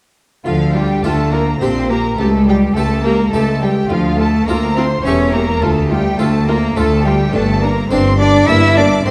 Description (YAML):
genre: classical, baroque-style concerto movement with solo episodes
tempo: 105 BPM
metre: 3/4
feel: straight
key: D minor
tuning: A4 = 439 Hz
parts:
  - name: rich chamber violin section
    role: second line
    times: 0.4-9.1 s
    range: F4 to E5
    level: -24 LUFS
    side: equal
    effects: none
  - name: rich cello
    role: melody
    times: 0.5-9.1 s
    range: F3 to E4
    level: -19 LUFS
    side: equal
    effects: none
  - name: rich chamber violin section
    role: melody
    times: 0.5-9.1 s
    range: F5 to E6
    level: -27 LUFS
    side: equal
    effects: none
  - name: harpsichord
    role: accompaniment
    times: 0.5-9.1 s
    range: C#2 to Bb4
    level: -26 LUFS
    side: equal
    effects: none
  - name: rich studio viola section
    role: accompaniment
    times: 0.5-9.1 s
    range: Bb3 to G4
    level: -27 LUFS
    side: equal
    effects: none
  - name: clear chamber double bass section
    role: bass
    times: 0.5-9.1 s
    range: E1 to D2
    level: -22 LUFS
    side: equal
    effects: none
  - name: rich studio cello section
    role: bass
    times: 0.5-9.1 s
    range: C#2 to D3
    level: -21 LUFS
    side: equal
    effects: none
room: moderate scoring stage reverb, RT60 1.7 s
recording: dark, warm production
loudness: -14 LUFS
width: mono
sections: 0.5-9.1 A section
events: none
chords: 0.5 Dm; 1.6 Gm/Bb; 2.2 A7/C#; 3.9 Dm; 5.0 A7/E; 5.6 Dm; 7.3 Gm; 8.5 Edim/G